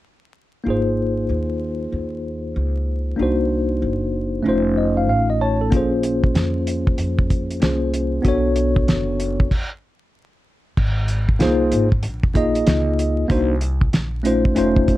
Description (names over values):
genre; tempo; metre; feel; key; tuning
hip hop, jazz-hop; 95 BPM; 4/4; swing 63% on 16ths; Ab major; A4 = 440 Hz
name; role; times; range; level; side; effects
tine electric piano; accompaniment; 0.6-15.0 s; A3 to A5; -20 LUFS; left 1 dB; medium stereo tremolo
upright bass; bass; 0.7-15.0 s; F1 to F2; -23 LUFS; equal; none
cloth-damped thuddy drum kit; drums; 5.7-15.0 s; crash cymbal, hi-hat, kick drum, snare drum; -19 LUFS; equal; none
room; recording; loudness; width
light reverb; dark, warm production, vinyl crackle; -17 LUFS; side -16 dB against mid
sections
0.7-10.8 A section; 10.8-15.0 B section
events
tine electric piano fill 4.5-5.7; stop 9.5-10.8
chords
0.7 Ab69; 3.2 Cm7b5; 4.5 F7b13; 5.7 Bbm9; 8.2 Bm9; 9.5 N.C.; 10.8 Ab69; 13.3 Cm7b5